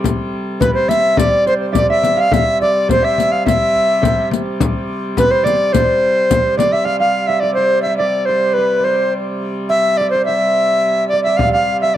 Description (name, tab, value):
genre	medieval dance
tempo	106 BPM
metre	2/4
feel	straight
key	C major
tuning	A4 = 440 Hz
part	concert harp	second line	0.0-12.0 s	G4 to F5	-22 LUFS	right 6 dB	none
part	warm hurdy-gurdy	drone	0.0-12.0 s	C3 to G3	-23 LUFS	equal	none
part	frame drum	percussion	0.0-6.9, 11.4-11.7 s	none	-18 LUFS	left 2 dB	none
part	riq	percussion	0.1-6.9 s	none	-22 LUFS	left 12 dB	none
part	bright reedy bass recorder	melody	0.6-12.0 s	B4 to F5	-14 LUFS	equal	slapback echo
room	light reverb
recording	dry, close 1970s-style studio recording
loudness	-13 LUFS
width	side -12 dB against mid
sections	0.0-6.9 A section; 6.9-12.0 B section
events	none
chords	none